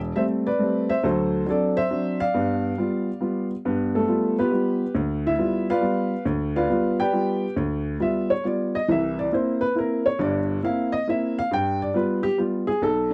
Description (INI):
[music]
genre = jazz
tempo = 138 BPM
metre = 3/4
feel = swing 68% on 8ths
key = G mixolydian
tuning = A4 = 440 Hz
[part]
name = warm upright piano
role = solo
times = 0.0-13.1 s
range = E1 to G5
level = -24 LUFS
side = equal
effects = none
[sound]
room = little or no reverb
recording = dry, close 1970s-style studio recording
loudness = -24 LUFS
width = mono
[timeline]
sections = 0.0-3.6 A section; 3.6-13.1 B section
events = upright piano solo 3.6-13.1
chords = 0.0 Am7; 1.0 D7; 2.3 G7; 8.9 C7; 11.5 G7